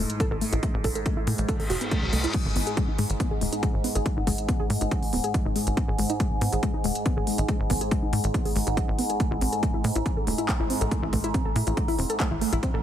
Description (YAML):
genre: driving peak-time techno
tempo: 140 BPM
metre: 4/4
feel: straight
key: unclear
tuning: A4 = 444 Hz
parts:
  - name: warbly dusty pluck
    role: riff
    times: 0.0-12.8 s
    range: G#3 to A4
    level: -30 LUFS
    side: left 1 dB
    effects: chorus, sidechain pumping, dub echo
  - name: tight sequencer bass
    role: bass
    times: 0.0-12.8 s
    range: D#1 to A2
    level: -27 LUFS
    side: equal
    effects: sidechain pumping
  - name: overtone-sweeping drone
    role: drone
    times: 0.0-12.8 s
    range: G#2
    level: -31 LUFS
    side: equal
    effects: chorus, built-in reverb, phaser, sidechain pumping
  - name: techno drum kit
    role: drums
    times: 0.1-12.7 s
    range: crash cymbal, handclaps, hi-hat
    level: -33 LUFS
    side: equal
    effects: overdrive, sidechain pumping on hats, small room ambience, sidechain pumping on cymbals
  - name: electronic kick drum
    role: drums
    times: 0.2-12.7 s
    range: none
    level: -27 LUFS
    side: equal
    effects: overdrive, small room ambience
  - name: reverse cymbal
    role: sound effects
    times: 1.6-2.3 s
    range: none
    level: -34 LUFS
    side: left 2 dB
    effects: none
room: light reverb, digital ambience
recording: heavily compressed radio sound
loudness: -23 LUFS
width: side -10 dB against mid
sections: 0.0-12.8 A section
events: reverse cymbal 1.6-2.3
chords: 0.0 N.C.; 9.2 A5